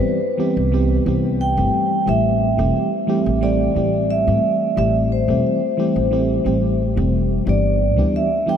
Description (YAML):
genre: sunset chillout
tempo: 89 BPM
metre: 4/4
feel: straight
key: A minor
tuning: A4 = 440 Hz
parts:
  - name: vibraphone with medium mallets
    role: melody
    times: 0.0-8.6 s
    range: B4 to G5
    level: -21 LUFS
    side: right 1 dB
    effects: ping-pong delay
  - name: mellow FM electric piano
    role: accompaniment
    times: 0.0-8.6 s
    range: E3 to G4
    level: -20 LUFS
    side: moving between left 6 dB and right 4 dB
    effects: chorus, auto-pan, ping-pong delay
  - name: upright bass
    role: bass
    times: 0.6-8.1 s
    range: E1 to A2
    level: -21 LUFS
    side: equal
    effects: tube saturation
room: wet huge ambient reverb, RT60 8.3 s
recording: dreamy mix soaked in reverb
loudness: -16 LUFS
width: side -8 dB against mid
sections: 0.0-8.6 A section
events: none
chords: 0.0 Cmaj7; 1.7 Am7; 7.5 Em7/G